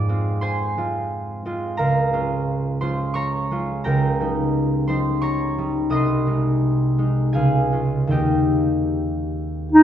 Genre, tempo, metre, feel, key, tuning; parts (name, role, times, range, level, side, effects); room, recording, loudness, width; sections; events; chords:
classical, romantic duo for clarinet and harp; 74-89 BPM; 3/4; rubato; A4 = 439 Hz
concert harp; accompaniment; 0.0-9.8 s; C2 to Eb6; -19 LUFS; equal
warm clarinet; melody; 9.7-9.8 s; Eb4; -6 LUFS; equal
wet recital hall reverb, RT60 1.6 s; recorded in a church or concert hall; -19 LUFS; side -10 dB against mid
0.0-9.8 A section
0.0 Fm/Ab; 1.8 Bbm7/Db; 3.9 Eb7/Db; 5.9 Ab/C; 7.4 Db; 8.1 Eb